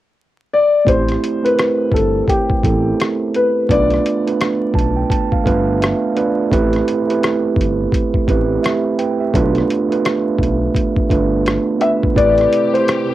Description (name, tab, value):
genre	lo-fi hip hop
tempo	85 BPM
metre	4/4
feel	swing 61% on 16ths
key	A minor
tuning	A4 = 440 Hz
part	dark upright piano	melody	0.5-5.1, 11.8-13.1 s	G4 to E5	-16 LUFS	left 3 dB	cassette tape
part	mellow tine electric piano	accompaniment	0.8-13.1 s	A3 to A5	-16 LUFS	right 3 dB	slow stereo tremolo, cassette tape
part	smooth synth bass	bass	0.9-12.5 s	G1 to B1	-21 LUFS	equal	tube saturation
part	lo-fi sampler-style drum kit	drums	0.9-13.1 s	hi-hat, kick drum, rim click	-19 LUFS	equal	overdrive, cassette tape
part	muted studio string section	sustained chords	12.2-13.1 s	C3 to G4	-26 LUFS	left 2 dB	cassette tape
room	light reverb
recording	home recording on cassette, vinyl crackle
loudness	-14 LUFS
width	side -14 dB against mid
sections	0.9-13.1 A section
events	tine electric piano fill 4.4-6.5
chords	0.0 N.C.; 0.9 Am9; 3.7 Bm7b5; 6.5 Am9; 9.3 Bm7b5; 12.2 Am9